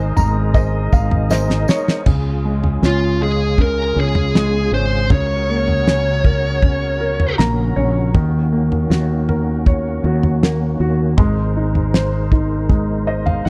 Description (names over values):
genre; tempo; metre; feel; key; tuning
pop ballad; 79 BPM; 4/4; straight; Db major; A4 = 440 Hz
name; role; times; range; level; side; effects
clear concert grand piano; accompaniment; 0.0-13.5 s; Db3 to Bb5; -24 LUFS; equal; none
percussive tonewheel organ; sustained chords; 0.0-13.5 s; Db3 to Eb5; -28 LUFS; equal; overdrive, chorus vibrato, subtle chorus
mellow fretless electric bass; bass; 0.0-13.5 s; Gb1 to Eb2; -21 LUFS; equal; none
damped 70s drum kit; drums; 0.2-13.5 s; crash cymbal, kick drum, snare drum, toms; -18 LUFS; equal; none
tambourine; percussion; 0.2-1.9 s; none; -40 LUFS; equal; none
bluesy overdriven lead guitar; melody; 2.9-7.3 s; F4 to Db5; -22 LUFS; equal; distortion
room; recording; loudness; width
studio reverb; dry, close 1970s-style studio recording; -17 LUFS; mono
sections
0.0-2.1 A section; 2.1-13.5 B section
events
grand piano fill 0.0-2.1, 7.0-8.1, 12.7-13.5; drum fill 1.3-2.1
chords
0.0 Abadd9; 2.1 Db; 5.1 Gb/Db; 8.1 Ebm7; 11.2 Abadd9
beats
0.55 1.31 | 2.07 2.83 3.59 4.34 | 5.11 5.86 6.62 7.38 | 8.14 8.90 9.66 10.42 | 11.18 11.94 12.70 13.46